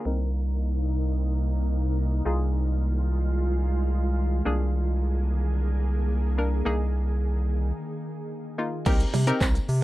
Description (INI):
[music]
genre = dance-pop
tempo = 109 BPM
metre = 4/4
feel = straight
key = C minor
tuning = A4 = 440 Hz
[part]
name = ethereal airy pad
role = sustained chords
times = 0.0-8.8 s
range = C3 to Ab4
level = -33 LUFS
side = equal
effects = ensemble chorus, built-in reverb, sidechain pumping, low-pass filter
[part]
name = hollow square pluck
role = accompaniment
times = 0.1-9.8 s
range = Bb3 to Bb4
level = -29 LUFS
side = left 2 dB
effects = chorus, sidechain pumping, low-pass filter
[part]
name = round analog bass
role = bass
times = 0.1-9.8 s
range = C2 to C3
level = -24 LUFS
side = equal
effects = sidechain pumping
[part]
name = direct-recorded clean electric guitar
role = riff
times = 8.9-9.6 s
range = G3 to C4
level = -29 LUFS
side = right 6 dB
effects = lush chorus
[part]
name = deep house drum kit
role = drums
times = 8.9-9.8 s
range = crash cymbal, handclaps, hi-hat, kick drum, shaker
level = -25 LUFS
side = equal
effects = none
[part]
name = tambourine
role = percussion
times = 8.9-9.7 s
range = none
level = -47 LUFS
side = left 4 dB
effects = none
[sound]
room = little or no reverb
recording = none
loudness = -23 LUFS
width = side -16 dB against mid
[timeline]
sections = 0.1-8.9 A section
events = filter sweep 0.1-8.9; break 7.8-8.9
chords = 0.1 Cm7; 2.3 Fm7/C; 4.5 Bb7/C; 6.7 Absus2/C; 8.9 Cm7